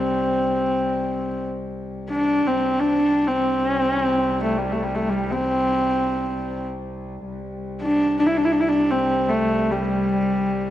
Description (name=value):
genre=mongolian traditional, Mongolian folk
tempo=free time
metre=none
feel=none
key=unclear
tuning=A4 = 440 Hz
part: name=rich horsehead fiddle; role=melody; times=0.0-10.7 s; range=G3 to E4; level=-20 LUFS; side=equal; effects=none
part: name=warm cello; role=drone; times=0.0-10.7 s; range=C2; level=-28 LUFS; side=left 1 dB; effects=none
room=wet concert hall reverb, RT60 1.9 s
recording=dark, warm production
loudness=-19 LUFS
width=side -12 dB against mid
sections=0.0-10.7 A section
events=none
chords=none